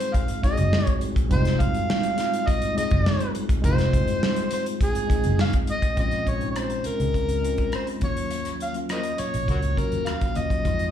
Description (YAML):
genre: lush 1970s-style soul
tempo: 103 BPM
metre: 4/4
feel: straight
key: Bb minor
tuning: A4 = 440 Hz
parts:
  - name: overdriven harmonica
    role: melody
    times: 0.0-10.9 s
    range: Gb4 to F5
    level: -27 LUFS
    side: equal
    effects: slapback echo
  - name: mellow tine electric piano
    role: accompaniment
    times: 0.0-10.9 s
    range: Gb3 to Ab4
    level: -29 LUFS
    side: left 3 dB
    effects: medium stereo tremolo, slapback echo
  - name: modern studio drum kit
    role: drums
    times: 0.0-10.9 s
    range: hi-hat, kick drum, rim click, snare drum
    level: -25 LUFS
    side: equal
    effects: none
  - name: vintage muted fingered electric bass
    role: bass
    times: 0.4-10.9 s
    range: F1 to F2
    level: -26 LUFS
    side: equal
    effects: none
room: light reverb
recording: live gig heard through the venue's PA, club reverb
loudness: -21 LUFS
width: side -10 dB against mid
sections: 0.0-6.0 A section; 6.0-10.9 B section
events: none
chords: 0.0 Fm7; 6.0 Bbm7; 8.0 Ebm7